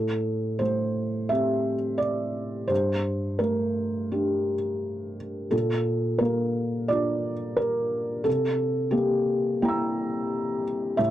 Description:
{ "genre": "neoclassical minimalist piano", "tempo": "87 BPM", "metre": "4/4", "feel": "rubato", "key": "unclear", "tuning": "A4 = 442 Hz", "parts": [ { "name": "felt-muted upright piano", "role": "solo", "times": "0.0-11.1 s", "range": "G2 to E6", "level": "-24 LUFS", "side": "equal", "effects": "none" } ], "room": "little or no reverb", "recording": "dry, close 1970s-style studio recording", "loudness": "-24 LUFS", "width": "side -12 dB against mid", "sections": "0.0-11.1 A section", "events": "none", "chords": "0.0 Am7; 2.7 Gmadd9; 5.5 Bbmaj7; 8.3 C7" }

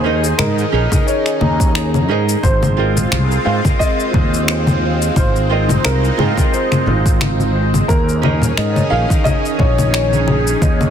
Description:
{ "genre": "sunset chillout", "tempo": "88 BPM", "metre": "4/4", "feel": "swing 55% on 16ths", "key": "Ab major", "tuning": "A4 = 440 Hz", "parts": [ { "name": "dark grand piano", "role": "melody", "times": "0.0-10.9 s", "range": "Ab4 to F5", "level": "-22 LUFS", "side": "left 1 dB", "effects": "digital delay" }, { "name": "nylon-string guitar", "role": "accompaniment", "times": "0.0-10.9 s", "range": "C4 to Eb5", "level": "-23 LUFS", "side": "moving between left 2 dB and right 7 dB", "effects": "auto-pan" }, { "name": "lush unison pad", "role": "sustained chords", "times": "0.0-10.9 s", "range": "Eb3 to Ab4", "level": "-22 LUFS", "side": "equal", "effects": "chorus, phaser" }, { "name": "concert harp", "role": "arpeggios", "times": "0.0-10.9 s", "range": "F4 to Bb5", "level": "-24 LUFS", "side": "right 2 dB", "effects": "digital delay" }, { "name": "fretless electric bass", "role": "bass", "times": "0.0-10.9 s", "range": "Ab1 to Ab2", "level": "-17 LUFS", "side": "equal", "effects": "tube saturation, ensemble chorus" }, { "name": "electronic shaker, finger snaps and congas", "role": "drums", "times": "0.2-10.9 s", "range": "none", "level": "-20 LUFS", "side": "left 3 dB", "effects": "overdrive, soft clipping on snare" }, { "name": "electronic kick drum", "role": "drums", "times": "0.9-10.8 s", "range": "none", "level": "-16 LUFS", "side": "equal", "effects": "overdrive" }, { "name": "congas", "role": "percussion", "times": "2.4-10.8 s", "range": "none", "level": "-23 LUFS", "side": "left 1 dB", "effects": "none" } ], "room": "light reverb, small room ambience", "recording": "dense, heavily limited modern master", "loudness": "-13 LUFS", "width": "side -8 dB against mid", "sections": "0.0-10.9 A section", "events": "none", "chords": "0.0 Eb7sus4; 2.4 Ab69; 7.9 Eb7sus4" }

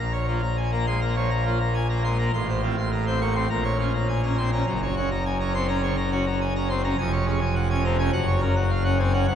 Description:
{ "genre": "classical, organ toccata", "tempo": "103 BPM", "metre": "4/4", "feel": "straight", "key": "Bb minor", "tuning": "A4 = 440 Hz", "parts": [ { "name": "pipe organ, full organ", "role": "solo", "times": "0.0-9.4 s", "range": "C1 to Db6", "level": "-21 LUFS", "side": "equal", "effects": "none" } ], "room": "wet church reverb, RT60 3.3 s", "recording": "nothing above 10.4 kHz", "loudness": "-22 LUFS", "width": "side -9 dB against mid", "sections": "0.0-9.4 A section", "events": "none", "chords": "0.0 Bbm; 2.3 F/A; 3.5 Bbm; 4.7 Gb; 7.0 Db/F; 8.1 Gb" }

